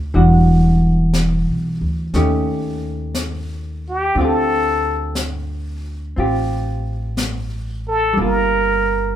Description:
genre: jazz ballad.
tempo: 60 BPM.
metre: 4/4.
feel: swing 67% on 8ths.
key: unclear.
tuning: A4 = 440 Hz.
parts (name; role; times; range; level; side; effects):
vintage hollow-body jazz guitar; accompaniment; 0.0-9.2 s; D3 to G4; -18 LUFS; equal; none.
upright bass; bass; 0.0-9.2 s; E1 to Eb2; -21 LUFS; equal; none.
jazz brush drum kit; drums; 0.1-9.2 s; brushed snare drum, hi-hat, snare drum; -28 LUFS; left 2 dB; none.
trumpet with plunger mute; melody; 3.9-9.2 s; G4 to Bb4; -17 LUFS; equal; none.
room: wet studio reverb, RT60 0.5 s.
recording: band playing live in one room.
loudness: -16 LUFS.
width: side -11 dB against mid.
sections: 0.0-9.2 A section.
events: muted trumpet solo 0.0-9.2.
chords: 0.1 Em9; 2.1 Eb7#11; 4.2 Dm7; 8.2 Gm7.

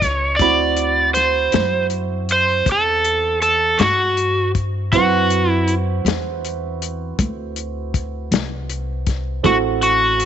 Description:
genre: slow blues.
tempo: 53 BPM (dotted quarters).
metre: 12/8.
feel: straight.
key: unclear.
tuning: A4 = 440 Hz.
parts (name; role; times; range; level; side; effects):
overdriven slide guitar; melody; 0.0-10.3 s; F#4 to D#5; -16 LUFS; right 1 dB; none.
warm upright piano; accompaniment; 0.0-10.3 s; C4 to B5; -24 LUFS; right 11 dB; none.
upright bass; bass; 0.0-10.3 s; A1 to G2; -23 LUFS; left 1 dB; none.
warm soul drum kit; drums; 0.0-10.3 s; hi-hat, kick drum, snare drum; -22 LUFS; left 6 dB; none.
room: light reverb, small room ambience.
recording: 1960s-style stereo with parts hard left and right, nothing above 8.0 kHz.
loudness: -16 LUFS.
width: side -9 dB against mid.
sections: 0.0-10.3 A section.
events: none.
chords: 0.4 D13.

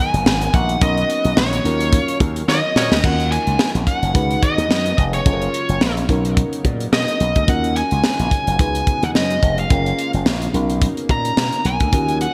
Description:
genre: early-eighties boogie funk.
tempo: 108 BPM.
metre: 4/4.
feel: swing 56% on 16ths.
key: Eb minor.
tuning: A4 = 440 Hz.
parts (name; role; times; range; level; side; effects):
nasal lead guitar with a parked wah; melody; 0.0-12.3 s; Db5 to A#5; -24 LUFS; equal; overdrive, delay.
FM electric piano with soft pad layer; accompaniment; 0.0-12.3 s; Cb4 to Cb5; -28 LUFS; equal; chorus, tremolo.
brassy analog pad; sustained chords; 0.0-12.3 s; Db3 to F5; -32 LUFS; equal; none.
slap bass with an envelope filter; bass; 0.1-12.3 s; F1 to Eb3; -23 LUFS; equal; none.
tight funk drum kit; drums; 0.1-12.3 s; crash cymbal, hi-hat, kick drum, snare drum; -21 LUFS; equal; gated reverb.
mellow horn section; second line; 2.5-2.9 s; Bb3 to Db5; -28 LUFS; equal; none.
room: light reverb, small room ambience.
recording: bright 1980s-style digital production.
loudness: -18 LUFS.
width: mono.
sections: 0.0-3.0 A section; 3.0-12.3 B section.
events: band accent 0.8-3.0; drum fill 2.5-3.0.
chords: 0.0 Abm7; 0.8 Bmaj7; 1.6 Ebm9; 3.0 Ebm7; 4.1 Db9sus4; 5.3 Gbmaj9; 6.1 Bmaj9; 7.5 Ebm7; 8.6 Db9sus4; 9.7 Gbmaj9; 10.5 Bmaj9.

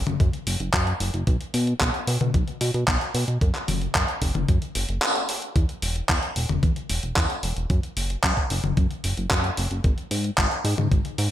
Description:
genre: italo disco.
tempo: 112 BPM.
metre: 4/4.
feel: straight.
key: unclear.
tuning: A4 = 438 Hz.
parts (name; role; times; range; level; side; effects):
chorused synth bass; bass; 0.0-11.3 s; E1 to B2; -25 LUFS; equal; tube saturation.
clean 12-bit digital drum machine; drums; 0.1-11.3 s; handclaps, hi-hat, toms; -26 LUFS; left 1 dB; gated reverb.
electronic kick drum; drums; 0.2-11.0 s; none; -23 LUFS; equal; none.
room: light reverb.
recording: bright 1980s-style digital production.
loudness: -21 LUFS.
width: side -12 dB against mid.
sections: 0.0-5.6 A section; 5.6-11.3 B section.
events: band accent 5.0.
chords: none.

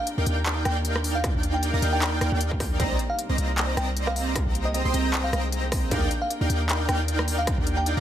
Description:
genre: future bass.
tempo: 154 BPM.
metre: 4/4.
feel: swing 55% on 16ths, half-time.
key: Eb major.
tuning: A4 = 440 Hz.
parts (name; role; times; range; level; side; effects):
bell-like FM electric piano; melody; 0.0-7.9 s; Eb5 to G5; -32 LUFS; right 1 dB; chorus, cassette tape, sidechain pumping, tape echo.
clear studio string section; sustained chords; 0.0-8.0 s; C3 to G5; -39 LUFS; equal; none.
concert harp; arpeggios; 0.0-8.0 s; C4 to G5; -37 LUFS; equal; sidechain pumping, tape echo.
trap drum kit; drums; 0.1-7.9 s; handclaps, hi-hat, rim click; -29 LUFS; equal; none.
airy dreamy lead; arpeggios; 0.2-8.0 s; G6 to C7; -38 LUFS; right 1 dB; chorus, sidechain pumping.
big bright polysynth; riff; 0.2-8.0 s; C4 to C6; -29 LUFS; right 1 dB; analog chorus, sidechain pumping.
warm 808-style bass; bass; 0.2-8.0 s; C2 to Eb2; -26 LUFS; equal; sidechain pumping.
electronic kick drum; drums; 1.2-7.6 s; none; -27 LUFS; equal; distortion.
room: digital ambience.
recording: none.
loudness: -22 LUFS.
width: side -10 dB against mid.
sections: 0.0-8.0 A section.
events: none.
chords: 0.0 Ebmaj7; 2.8 Cm7; 4.4 Abmaj7/C; 5.9 Ebmaj7.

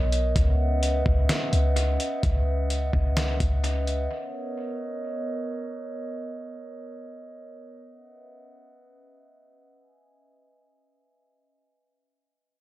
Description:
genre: hip hop, atmospheric cloud-rap.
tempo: 128 BPM.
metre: 4/4.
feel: half-time.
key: unclear.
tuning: A4 = 441 Hz.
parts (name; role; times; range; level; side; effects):
glass harmonica; sustained chords; 0.0-11.6 s; B3 to G#5; -31 LUFS; right 1 dB; sidechain pumping, low-pass filter.
clean 808-style bass; bass; 0.0-4.1 s; B1 to C#2; -23 LUFS; equal; none.
trip hop sampler-style drum kit; drums; 0.1-4.0 s; hi-hat, kick drum, snare drum; -27 LUFS; equal; tape echo.
room: little or no reverb.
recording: echo-heavy mix.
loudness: -24 LUFS.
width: side -16 dB against mid.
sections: 0.0-11.6 A section.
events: fade-out 0.0-11.6; filter sweep on glass harmonica 0.0-11.6.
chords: 0.4 C#m11; 4.1 Bmaj9; 7.9 C#m11.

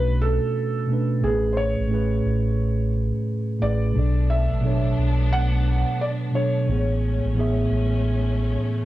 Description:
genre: hip hop.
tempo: 88 BPM.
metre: 4/4.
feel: swing 65% on 16ths.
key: unclear.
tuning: A4 = 440 Hz.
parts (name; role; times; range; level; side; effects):
felt-muted upright piano; melody; 0.0-7.7 s; G#4 to F#5; -28 LUFS; right 1 dB; low-pass filter, plate reverb, tape echo.
mellow tine electric piano; accompaniment; 0.0-8.8 s; A2 to E5; -22 LUFS; right 1 dB; low-pass filter.
round analog bass; bass; 0.0-8.6 s; A1 to B1; -24 LUFS; equal; none.
clear studio string section; sustained chords; 3.9-8.8 s; G#3 to D4; -33 LUFS; left 1 dB; low-pass filter, plate reverb.
room: light reverb.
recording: dry, gritty hardware recording, cassette tape.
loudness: -20 LUFS.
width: side -15 dB against mid.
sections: 0.0-8.8 A section.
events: none.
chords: 0.0 Bm9; 1.2 Amaj7; 3.9 Bm9; 6.7 Amaj7.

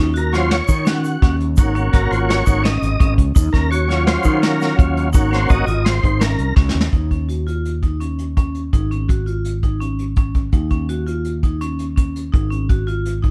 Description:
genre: progressive instrumental, band music in an uneven meter.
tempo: 168 BPM.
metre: 5/4.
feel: straight.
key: Eb dorian.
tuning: A4 = 440 Hz.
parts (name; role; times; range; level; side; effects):
vibraphone with medium hard mallets; arpeggios; 0.0-13.3 s; Db4 to Gb4; -27 LUFS; equal; plate reverb.
fretless electric bass; bass; 0.0-13.3 s; Ab1 to Eb3; -23 LUFS; equal; none.
tonewheel organ; accompaniment; 0.2-6.5 s; Gb3 to Eb5; -23 LUFS; equal; chorus vibrato, plate reverb.
vintage brush drum kit; drums; 0.2-13.3 s; hi-hat, kick drum, snare drum; -19 LUFS; equal; none.
egg shaker; percussion; 0.7-6.3 s; none; -40 LUFS; equal; none.
room: light reverb.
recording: dark, warm production.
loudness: -18 LUFS.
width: mono.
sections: 0.0-6.9 A section; 6.9-13.3 B section.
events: tonewheel organ solo 0.0-6.9; drum fill 6.6-6.9.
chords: 0.0 Ebm7; 1.6 Ab7sus4; 3.4 Ebm7; 5.1 Ab7sus4; 6.9 Eb7(no3); 8.7 Absus4; 10.5 Eb7(no3); 12.3 Ab7sus4.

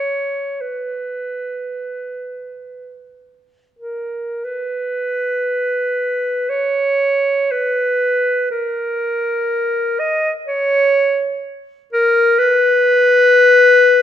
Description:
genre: classical, free, expressive piece for unaccompanied clarinet.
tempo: free time.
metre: none.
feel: none.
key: unclear.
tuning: A4 = 440 Hz.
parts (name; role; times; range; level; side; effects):
clear clarinet; solo; 0.0-14.0 s; A#4 to D#5; -14 LUFS; left 1 dB; none.
room: moderate scoring stage reverb, RT60 1.6 s.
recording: none.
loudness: -14 LUFS.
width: side -10 dB against mid.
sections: 0.0-4.4 A section; 4.4-14.0 B section.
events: none.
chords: none.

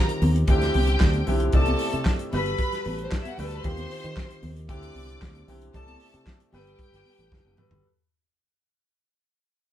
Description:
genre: disco.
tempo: 114 BPM.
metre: 4/4.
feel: straight.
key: G major.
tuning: A4 = 443 Hz.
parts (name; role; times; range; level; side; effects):
clear studio string section; second line; 0.0-7.6 s; C4 to D6; -33 LUFS; left 2 dB; none.
warm grand piano; accompaniment; 0.0-7.9 s; C3 to D5; -30 LUFS; equal; none.
warm soul drum kit; drums; 0.1-7.8 s; handclaps, hi-hat, kick drum, snare drum, toms; -24 LUFS; equal; none.
fingered electric bass; bass; 0.2-7.8 s; F#1 to Eb3; -26 LUFS; equal; none.
congas; percussion; 0.2-7.7 s; none; -33 LUFS; right 1 dB; none.
room: moderate studio reverb, RT60 0.7 s.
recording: band playing live in one room.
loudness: -22 LUFS.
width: side -12 dB against mid.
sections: 0.0-7.8 A section.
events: fade-out 0.0-7.8; drum fill 7.3-7.8.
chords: 0.5 D9sus4; 1.5 C69; 2.3 Gmaj9; 3.6 Eb69; 4.7 D9sus4; 5.7 C69; 6.5 Gmaj9.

